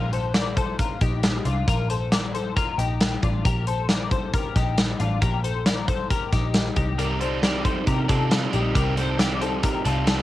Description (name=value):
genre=jangly indie pop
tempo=136 BPM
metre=4/4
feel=straight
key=unclear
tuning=A4 = 439 Hz
part: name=twelve-string electric guitar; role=arpeggios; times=0.0-10.2 s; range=D4 to D5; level=-28 LUFS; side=left 7 dB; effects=ensemble chorus, cassette tape, tape echo
part: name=vintage muted picked electric bass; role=bass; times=0.0-10.2 s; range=A1 to C3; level=-26 LUFS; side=equal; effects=none
part: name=big rock drum kit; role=drums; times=0.1-10.2 s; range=hi-hat, kick drum, snare drum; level=-24 LUFS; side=equal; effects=cassette tape
part: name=crunchy overdriven guitar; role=accompaniment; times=7.0-10.2 s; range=C3 to D5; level=-27 LUFS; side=right 7 dB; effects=cassette tape
room=light reverb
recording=home recording on cassette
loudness=-21 LUFS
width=side -15 dB against mid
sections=0.0-10.2 A section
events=none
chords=0.0 Ebmaj7; 6.8 Cmadd9